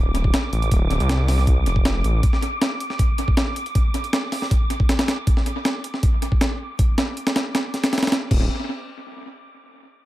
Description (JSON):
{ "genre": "drum and bass, jungle", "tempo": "158 BPM", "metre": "4/4", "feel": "straight", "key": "D minor", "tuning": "A4 = 441 Hz", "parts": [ { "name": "detuned saw bass", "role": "bass", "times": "0.0-2.2, 8.3-8.5 s", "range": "D1 to C2", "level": "-20 LUFS", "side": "equal", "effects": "none" }, { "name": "wind-like tuned noise texture", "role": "texture", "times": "0.0-8.3 s", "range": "D6", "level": "-32 LUFS", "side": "right 2 dB", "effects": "built-in reverb" }, { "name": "breakbeat sampler-style drum kit", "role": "drums", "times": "0.1-8.4 s", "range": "crash cymbal, hi-hat, kick drum, snare drum", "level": "-20 LUFS", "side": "equal", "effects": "analog delay" } ], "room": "little or no reverb", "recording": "echo-heavy mix", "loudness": "-18 LUFS", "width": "side -16 dB against mid", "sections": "0.0-8.3 A section; 8.3-9.8 B section", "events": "none", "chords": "0.0 Dm7; 2.2 N.C.", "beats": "0.33 | 0.71 1.09 1.47 1.85 | 2.23 2.61 2.99 3.37 | 3.75 4.13 4.51 4.89 | 5.27 5.65 6.03 6.41 | 6.79 7.17 7.55 7.93 | 8.31" }